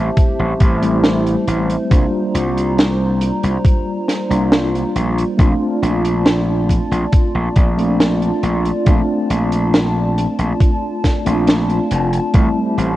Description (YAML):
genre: vaporwave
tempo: 69 BPM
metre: 4/4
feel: straight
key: Bb lydian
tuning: A4 = 440 Hz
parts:
  - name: mellow tine electric piano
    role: accompaniment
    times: 0.0-13.0 s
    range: G3 to F4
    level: -19 LUFS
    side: equal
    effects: medium stereo tremolo, analog chorus, analog delay
  - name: warbly tape-like pad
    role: sustained chords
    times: 0.0-13.0 s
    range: F4 to Bb5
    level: -25 LUFS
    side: equal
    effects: chorus, built-in reverb
  - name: gritty slap bass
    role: bass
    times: 0.0-13.0 s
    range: F1 to C2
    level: -18 LUFS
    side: equal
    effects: overdrive, tube saturation
  - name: compact cocktail drum kit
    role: drums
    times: 0.2-13.0 s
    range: hi-hat, snare drum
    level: -18 LUFS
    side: right 1 dB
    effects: studio reverb
  - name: electronic kick drum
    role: drums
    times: 0.2-12.5 s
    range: none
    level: -13 LUFS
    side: equal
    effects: studio reverb
room: light reverb, studio reverb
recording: worn, warbling old tape, cassette tape, warbly pitch drift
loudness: -14 LUFS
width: side -15 dB against mid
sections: 0.0-13.0 A section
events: none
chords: 0.0 Am7; 1.9 C9sus4; 5.4 Bbmaj7; 12.3 Am7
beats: 0.17 1.04 | 1.91 2.78 3.65 4.52 | 5.39 6.26 7.13 8.00 | 8.87 9.74 10.61 11.48 | 12.35